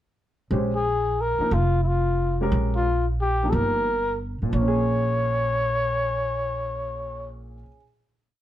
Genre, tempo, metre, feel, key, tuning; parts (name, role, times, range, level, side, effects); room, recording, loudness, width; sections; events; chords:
modal jazz; 179 BPM; 3/4; swing 65% on 8ths; Bb dorian; A4 = 439 Hz
warm baby grand piano; accompaniment; 0.5-7.8 s; Bb2 to C5; -28 LUFS; equal
upright bass; bass; 0.5-7.6 s; F1 to Bb1; -26 LUFS; right 1 dB
breathy trumpet; melody; 0.8-7.3 s; E4 to Db5; -24 LUFS; left 2 dB
light reverb; -21 LUFS; side -12 dB against mid
0.5-4.5 A section; 4.5-6.5 final chord
0.5 Bbm7; 2.5 Ebadd9/Bb; 4.5 Bbm7